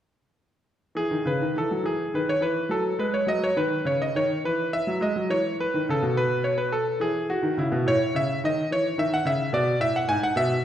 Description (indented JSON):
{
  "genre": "classical, baroque-style suite movement for grand piano",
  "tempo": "70 BPM (dotted quarters)",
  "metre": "12/8",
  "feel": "rubato",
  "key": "unclear",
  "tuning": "A4 = 440 Hz",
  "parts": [
    { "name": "bright concert grand piano", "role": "solo", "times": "1.0-10.6 s", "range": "G#2 to G#5", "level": "-22 LUFS", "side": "equal", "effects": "none" }
  ],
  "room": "wet recital hall reverb, RT60 1.6 s",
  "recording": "heard from further back in the room",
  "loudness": "-22 LUFS",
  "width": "side -10 dB against mid",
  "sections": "0.9-10.6 A section",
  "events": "none",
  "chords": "0.9 C#m9; 2.7 C#9sus4; 4.4 E5; 7.9 A; 9.5 G#dim"
}